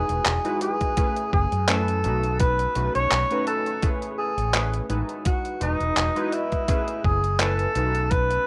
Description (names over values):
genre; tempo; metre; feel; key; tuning
vaporwave; 84 BPM; 4/4; swing 55% on 16ths; unclear; A4 = 441 Hz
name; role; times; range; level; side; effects
breathy alto saxophone; melody; 0.0-8.5 s; D#4 to C#5; -28 LUFS; equal; vintage 12-bit sampler grit, tape echo
warbly lo-fi synth keys; accompaniment; 0.0-8.4 s; E3 to G#5; -32 LUFS; equal; lush chorus
mellow fretless electric bass; bass; 0.1-8.4 s; E1 to F#2; -28 LUFS; equal; tube saturation
detuned 8-bit digital drum machine; drums; 0.1-8.4 s; handclaps, hi-hat; -28 LUFS; equal; overdrive
electronic kick drum; drums; 0.8-8.3 s; none; -26 LUFS; equal; overdrive
room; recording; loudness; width
moderate studio reverb, RT60 0.6 s; rough home demo mix, cassette tape; -24 LUFS; mono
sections
0.0-8.5 A section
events
none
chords
0.0 Emaj9; 1.0 F#m11; 2.4 B9; 3.8 Amaj7; 5.3 Emaj9; 6.7 F#m11